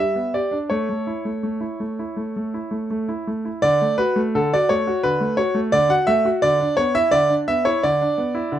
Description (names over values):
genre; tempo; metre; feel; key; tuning
classical-period piano sonatina; 81-87 BPM; 4/4; rubato; D major; A4 = 440 Hz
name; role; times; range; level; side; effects
bright concert grand piano; solo; 0.0-8.6 s; D3 to F#5; -18 LUFS; equal; none
room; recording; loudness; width
light reverb; dark, warm production; -18 LUFS; side -11 dB against mid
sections
0.0-3.6 A section; 3.6-8.6 B section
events
none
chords
0.0 G; 0.7 A; 3.6 D; 6.4 E5/D